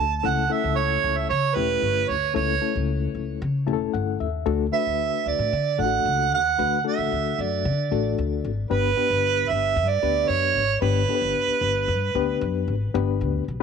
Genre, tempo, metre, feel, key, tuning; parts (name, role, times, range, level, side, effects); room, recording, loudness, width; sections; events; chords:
uptempo 1960s-style soul; 113 BPM; 4/4; straight; A4 = 439 Hz
mellow harmonica; melody; 0.0-12.6 s; B4 to A5; -23 LUFS; right 8 dB
barky reed electric piano; accompaniment; 0.0-13.6 s; A3 to A5; -27 LUFS; left 15 dB; overdrive, tremolo
upright bass; bass; 0.0-13.6 s; E1 to D3; -27 LUFS; left 2 dB
moderate plate reverb, RT60 3.2 s; 1960s-style stereo with parts hard left and right; -21 LUFS; side -6 dB against mid
0.0-12.9 A section
reed electric piano fill 3.4-4.5
0.2 A; 4.5 D; 8.7 G